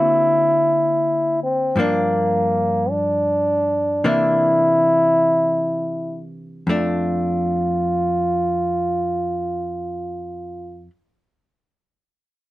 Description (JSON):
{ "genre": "jazz ballad", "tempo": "41-60 BPM", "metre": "4/4", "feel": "swing 66% on 8ths", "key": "F major", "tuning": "A4 = 440 Hz", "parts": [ { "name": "trombone with cup mute", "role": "melody", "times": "0.0-10.9 s", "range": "Bb3 to F4", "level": "-18 LUFS", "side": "equal", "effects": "none" }, { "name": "hollow-body jazz guitar", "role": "accompaniment", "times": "0.0-10.9 s", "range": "F2 to F#4", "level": "-24 LUFS", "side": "left 1 dB", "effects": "none" } ], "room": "light reverb", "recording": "close, detailed microphones", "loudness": "-17 LUFS", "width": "side -16 dB against mid", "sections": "0.0-1.8 A section; 1.8-6.7 B section; 6.7-12.5 C section", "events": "slowing down 0.0-6.7", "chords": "0.0 D7b13; 1.8 Gm7; 4.0 C9; 6.7 F6", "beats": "0.69 | 1.75 2.86 4.03 5.29 | 6.68 8.14 9.59" }